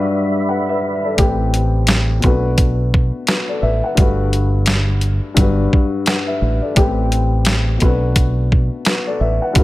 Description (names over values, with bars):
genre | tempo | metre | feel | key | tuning
hip hop, boom-bap hip-hop | 86 BPM | 4/4 | swing 60% on 16ths | unclear | A4 = 440 Hz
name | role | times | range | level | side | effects
dark upright piano | accompaniment | 0.0-9.6 s | G2 to F#5 | -19 LUFS | left 3 dB | cassette tape, high-pass filter, low-pass filter
percussive tonewheel organ | sustained chords | 0.0-1.2 s | G3 to B5 | -23 LUFS | right 3 dB | chorus vibrato, slow rotary speaker, high-pass filter, low-pass filter
deep dub fingered electric bass | bass | 1.2-9.6 s | G1 to B1 | -17 LUFS | equal | none
boom bap sampler-style drum kit | drums | 1.2-9.6 s | hi-hat, kick drum, snare drum | -16 LUFS | equal | none
room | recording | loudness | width
small room reverb | none | -14 LUFS | side -17 dB against mid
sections
0.0-1.2 A section; 1.2-9.6 B section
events
break 0.0-1.2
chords
0.0 Em7/G; 1.2 Am7; 2.2 Bm7; 4.0 Gmaj7; 5.4 Gmaj13; 6.8 Am7; 7.8 Bm7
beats
0.49 | 1.18 1.88 2.58 3.28 | 3.97 4.67 5.37 6.07 | 6.76 7.46 8.16 8.86 | 9.56